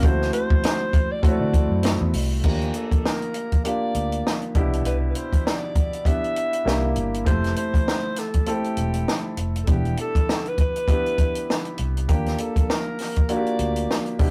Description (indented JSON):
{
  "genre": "lush 1970s-style soul",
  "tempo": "100 BPM",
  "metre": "4/4",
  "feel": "swing 58% on 16ths",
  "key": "unclear",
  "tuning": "A4 = 440 Hz",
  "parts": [
    { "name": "breathy alto saxophone", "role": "melody", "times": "0.0-14.2 s", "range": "G4 to E5", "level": "-31 LUFS", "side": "equal", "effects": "none" },
    { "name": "warm grand piano", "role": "accompaniment", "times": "0.0-14.3 s", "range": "B2 to A4", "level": "-29 LUFS", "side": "equal", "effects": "none" },
    { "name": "vintage muted fingered electric bass", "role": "bass", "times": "0.0-14.3 s", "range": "E1 to D3", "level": "-27 LUFS", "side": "equal", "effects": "none" },
    { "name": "compact cocktail drum kit", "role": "drums", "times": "0.0-14.3 s", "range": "crash cymbal, hi-hat, kick drum, snare drum", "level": "-24 LUFS", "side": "equal", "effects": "none" }
  ],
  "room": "moderate small room reverb, RT60 0.5 s",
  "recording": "rough rehearsal-room recording, warm saturation",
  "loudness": "-23 LUFS",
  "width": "mono",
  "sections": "0.0-2.4 A section; 2.4-14.3 B section",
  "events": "none",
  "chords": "0.0 D7; 2.4 Ebmaj9; 4.5 Cmaj9; 6.7 C7; 7.3 Fmaj9; 9.7 Em7; 12.1 Ebmaj9",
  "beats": "| 0.03 0.63 1.23 1.83 | 2.44 3.04 3.64 4.25 | 4.85 5.45 6.06 6.66 | 7.26 7.87 8.47 9.07 | 9.68 10.28 10.88 11.49 | 12.09 12.69 13.29 13.90"
}